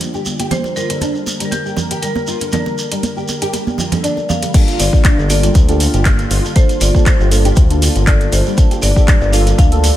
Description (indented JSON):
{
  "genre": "afro house",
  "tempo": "119 BPM",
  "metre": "4/4",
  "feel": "swing 54% on 16ths",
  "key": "G minor",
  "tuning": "A4 = 441 Hz",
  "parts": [
    { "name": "marimba with hard mallets", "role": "melody", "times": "0.0-10.0 s", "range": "G4 to F5", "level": "-24 LUFS", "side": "left 1 dB", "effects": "tape echo" },
    { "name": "warm analog pad", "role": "sustained chords", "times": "0.0-10.0 s", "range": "D3 to Bb4", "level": "-24 LUFS", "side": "equal", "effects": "wide subtle chorus, sidechain pumping" },
    { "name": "afro-pop drum kit", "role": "drums", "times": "0.0-9.9 s", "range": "crash cymbal, handclaps, hi-hat", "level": "-21 LUFS", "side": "equal", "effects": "studio reverb" },
    { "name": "shekere", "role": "percussion", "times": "0.0-9.9 s", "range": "none", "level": "-26 LUFS", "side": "right 2 dB", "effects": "none" },
    { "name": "nylon-string guitar", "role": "arpeggios", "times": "0.1-9.7 s", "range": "D3 to G4", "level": "-24 LUFS", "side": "equal", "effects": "ensemble chorus, sidechain pumping, tape echo" },
    { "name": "congas", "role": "percussion", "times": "0.1-4.5 s", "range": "none", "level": "-22 LUFS", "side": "right 4 dB", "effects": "none" },
    { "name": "deep mellow chord stab", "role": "stabs", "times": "4.5-10.0 s", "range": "Bb3 to A4", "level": "-22 LUFS", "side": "right 2 dB", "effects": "chorus, phaser, sidechain pumping, tape echo" },
    { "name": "electronic kick drum", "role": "drums", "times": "4.5-9.7 s", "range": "none", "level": "-11 LUFS", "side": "equal", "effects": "studio reverb" },
    { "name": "smooth synth bass", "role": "bass", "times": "4.8-9.9 s", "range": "G1 to D2", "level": "-14 LUFS", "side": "equal", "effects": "sidechain pumping" }
  ],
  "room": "light reverb, small room ambience",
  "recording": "none",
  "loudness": "-12 LUFS",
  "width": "side -13 dB against mid",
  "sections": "0.0-4.5 A section; 4.5-10.0 B section",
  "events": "filter sweep on analog synth pad 0.0-4.5; drop 4.5-10.0",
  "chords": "0.0 Gm7",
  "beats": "0.01 | 0.51 1.01 1.52 2.02 | 2.53 3.03 3.54 4.04 | 4.54 5.05 5.55 6.06 | 6.56 7.07 7.57 8.07 | 8.58 9.08 9.59"
}